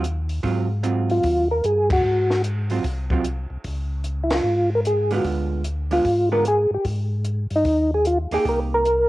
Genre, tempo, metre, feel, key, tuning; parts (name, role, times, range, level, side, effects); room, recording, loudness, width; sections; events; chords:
soul jazz organ trio; 150 BPM; 4/4; swing 65% on 8ths; Ab mixolydian; A4 = 441 Hz
vintage hollow-body jazz guitar; accompaniment; 0.0-8.8 s; D3 to G4; -26 LUFS; right 5 dB; cassette tape
mellow tonewheel organ; bass; 0.0-9.1 s; C2 to Ab2; -24 LUFS; equal; chorus vibrato, slow rotary speaker
compact cocktail drum kit; drums; 0.0-9.0 s; hi-hat, kick drum, ride cymbal, snare drum; -29 LUFS; equal; cassette tape
percussive tonewheel organ; melody; 1.1-9.1 s; Eb4 to Bb4; -19 LUFS; equal; slow rotary speaker, chorus vibrato, cassette tape
light reverb; home recording on cassette; -19 LUFS; side -17 dB against mid
0.0-9.1 A section
band accent 1.8, 4.2
0.0 Ab6; 3.6 Db; 5.2 Ddim7; 6.8 Ab5; 8.5 Cm7